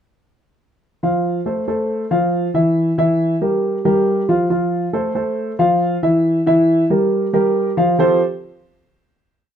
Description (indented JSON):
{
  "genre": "latin",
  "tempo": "138 BPM",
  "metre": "4/4",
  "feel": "straight",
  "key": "F major",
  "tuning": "A4 = 440 Hz",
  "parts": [
    { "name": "dark concert grand piano", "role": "solo", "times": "1.0-8.2 s", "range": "E3 to F5", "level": "-15 LUFS", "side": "equal", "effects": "none" }
  ],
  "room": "light reverb",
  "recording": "close, detailed microphones",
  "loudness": "-15 LUFS",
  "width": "side -8 dB against mid",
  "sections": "1.0-8.0 montuno (vamp); 8.0-9.6 final chord",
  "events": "none",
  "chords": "1.0 F; 2.8 Edim; 4.5 F; 6.2 Edim; 8.0 Fadd9",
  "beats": "| 1.03 1.46 1.90 2.33 | 2.76 3.20 3.63 4.07 | 4.50 4.94 5.37 5.81 | 6.24 6.68 7.12 7.55 | 7.99"
}